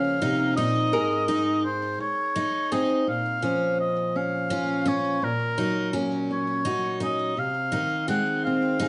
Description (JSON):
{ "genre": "acoustic folk duo or small band", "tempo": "56 BPM (dotted quarters)", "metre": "6/8", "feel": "straight", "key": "Bb minor", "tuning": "A4 = 440 Hz", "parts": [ { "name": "warm oboe", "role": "melody", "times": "0.0-8.9 s", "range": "Bb4 to Gb5", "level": "-30 LUFS", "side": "equal", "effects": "none" }, { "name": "metal-body resonator slide guitar", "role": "second line", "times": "0.0-3.0 s", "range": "Ab4 to Bb4", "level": "-34 LUFS", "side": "equal", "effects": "none" }, { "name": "fingerpicked steel-string acoustic guitar", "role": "accompaniment", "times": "0.0-8.9 s", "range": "Ab2 to Ab4", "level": "-30 LUFS", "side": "equal", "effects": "none" }, { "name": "picked twelve-string acoustic guitar", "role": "arpeggios", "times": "0.0-8.9 s", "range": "C4 to Eb4", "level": "-31 LUFS", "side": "equal", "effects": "none" } ], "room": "moderate large studio reverb, RT60 0.8 s", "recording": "nothing above 10.5 kHz", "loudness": "-25 LUFS", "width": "mono", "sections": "0.0-3.1 A section; 3.1-8.9 B section", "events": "none", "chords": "0.0 Bbm; 0.9 Ab; 3.1 Bbm; 5.2 Gb/Bb; 7.4 Ab/C", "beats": "| 0.93 2.00 | 3.08 4.15 | 5.22 6.30 | 7.37 8.45" }